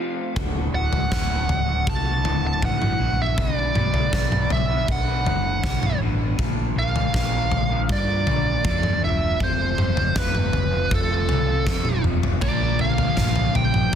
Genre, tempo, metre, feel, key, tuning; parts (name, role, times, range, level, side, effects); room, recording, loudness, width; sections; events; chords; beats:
quiet-loud alternative rock; 80 BPM; 4/4; straight; A4 = 440 Hz
electric guitar through a small old amp; arpeggios; 0.0-14.0 s; D2 to B4; -30 LUFS; left 1 dB; phaser
hollow-body short-scale fingered electric bass; bass; 0.4-14.0 s; D1 to G2; -25 LUFS; equal
big rock drum kit; drums; 0.4-14.0 s; kick drum, snare drum, toms; -23 LUFS; left 1 dB
bluesy overdriven lead guitar; melody; 0.7-13.9 s; A4 to A5; -25 LUFS; right 3 dB; distortion, digital delay
crunchy overdriven guitar; riff; 12.4-14.0 s; Bb2 to Bb3; -27 LUFS; left 9 dB
overdriven semi-hollow guitar; riff; 12.4-14.0 s; Bb2 to Bb3; -28 LUFS; right 10 dB
little or no reverb; dense, heavily limited modern master; -19 LUFS; side -8 dB against mid
0.0-12.4 A section; 12.4-14.0 B section
drum fill 11.7-12.4
0.4 D; 3.4 Bm; 6.4 Bb; 9.4 F; 12.4 Bb
| 0.37 1.12 1.88 2.63 | 3.38 4.14 4.89 5.64 | 6.40 7.15 7.90 8.66 | 9.41 10.17 10.92 11.68 | 12.43 13.18 13.94